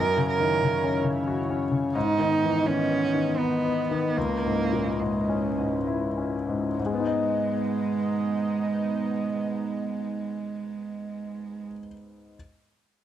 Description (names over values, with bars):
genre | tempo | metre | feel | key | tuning
neoclassical piano and strings | 64-92 BPM | 3/4 | rubato | G# minor | A4 = 441 Hz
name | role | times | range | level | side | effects
warm cello | second line | 0.0-11.6 s | G#3 to A#4 | -27 LUFS | right 5 dB | none
clear concert grand piano | accompaniment | 0.0-12.4 s | C#2 to D#5 | -27 LUFS | left 4 dB | none
chorused pulse-width pad | sustained chords | 0.0-11.6 s | B3 to D#5 | -33 LUFS | right 2 dB | none
room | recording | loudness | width
moderate studio ambience, RT60 0.5 s | dry, close 1970s-style studio recording | -24 LUFS | side -11 dB against mid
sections
0.0-6.8 A section; 6.8-12.3 B section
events
slowing down 0.9-6.8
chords
0.0 F#7; 2.0 G#m; 4.2 C#madd9; 6.8 G#m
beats
0.61 1.27 | 1.95 2.65 3.38 | 4.16 4.99 5.86 | 6.79 7.71 8.64 | 9.56 10.49 11.41